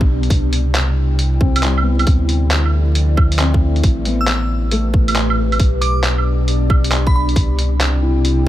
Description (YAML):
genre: future garage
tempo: 136 BPM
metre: 4/4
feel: swing 66% on 16ths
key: unclear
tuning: A4 = 445 Hz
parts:
  - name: felt-muted upright piano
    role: accompaniment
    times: 0.0-8.5 s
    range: G3 to E4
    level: -24 LUFS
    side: left 3 dB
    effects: vintage 12-bit sampler grit, sidechain pumping, ping-pong delay
  - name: warbly tape-like pad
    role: sustained chords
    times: 0.0-8.5 s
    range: A2 to G5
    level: -23 LUFS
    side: equal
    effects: chorus, built-in reverb, sidechain pumping
  - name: soft dub sub bass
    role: bass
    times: 0.0-8.5 s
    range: A1 to D2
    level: -17 LUFS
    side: equal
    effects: sidechain pumping
  - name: electronic kick drum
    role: drums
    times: 0.0-7.5 s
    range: none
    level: -14 LUFS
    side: equal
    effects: none
  - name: lo-fi sampler-style drum kit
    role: drums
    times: 0.2-8.4 s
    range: claves, handclaps, hi-hat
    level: -22 LUFS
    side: right 1 dB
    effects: none
  - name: glassy synth bell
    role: melody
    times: 4.2-7.2 s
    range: B5 to E6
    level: -26 LUFS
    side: right 1 dB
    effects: chorus, tape echo
room: digital ambience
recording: vinyl crackle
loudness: -13 LUFS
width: side -14 dB against mid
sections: 0.0-8.5 A section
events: none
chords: 0.3 C; 2.1 Dmadd9; 3.8 A7(no3); 5.6 G/B; 7.4 C